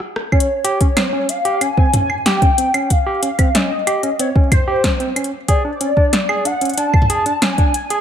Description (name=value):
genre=IDM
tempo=93 BPM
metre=4/4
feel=straight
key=Db lydian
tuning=A4 = 438 Hz
part: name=electro analog drum machine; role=drums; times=0.0-8.0 s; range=claves, hi-hat, rim click, snare drum, toms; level=-19 LUFS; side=equal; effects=none
part: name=warbly nostalgic lead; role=melody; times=0.3-8.0 s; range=C5 to A5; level=-19 LUFS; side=left 1 dB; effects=ensemble chorus, digital delay
part: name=barky tine electric piano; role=arpeggios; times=0.3-8.0 s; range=C4 to Ab4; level=-21 LUFS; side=right 2 dB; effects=vintage 12-bit sampler grit, tape echo
part: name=electronic kick drum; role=drums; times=0.3-7.7 s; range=none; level=-15 LUFS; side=equal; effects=none
room=light reverb, digital ambience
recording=none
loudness=-14 LUFS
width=side -9 dB against mid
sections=0.3-8.0 A section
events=break 0.0-0.3; drum fill 0.0-0.3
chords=0.3 Dbmaj7(no3); 5.5 D5